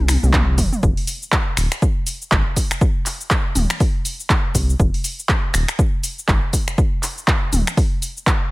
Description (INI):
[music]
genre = afro house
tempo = 121 BPM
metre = 4/4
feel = swing 59% on 16ths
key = F minor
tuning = A4 = 440 Hz
[part]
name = round analog bass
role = bass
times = 0.0-7.6 s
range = Eb1 to C2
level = -18 LUFS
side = equal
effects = sidechain pumping
[part]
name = deep house drum kit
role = drums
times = 0.1-8.4 s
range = finger snaps, handclaps, hi-hat, shaker, toms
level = -22 LUFS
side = equal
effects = overdrive
[part]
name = electronic kick drum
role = drums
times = 0.3-8.4 s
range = none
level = -18 LUFS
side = equal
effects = overdrive
[sound]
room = digital ambience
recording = none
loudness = -16 LUFS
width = side -21 dB against mid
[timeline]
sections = 0.0-8.5 A section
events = drum fill 0.0-0.8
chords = none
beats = 0.33 | 0.83 1.33 1.82 2.32 | 2.81 3.31 3.81 4.30 | 4.80 5.29 5.79 6.29 | 6.78 7.28 7.77 8.27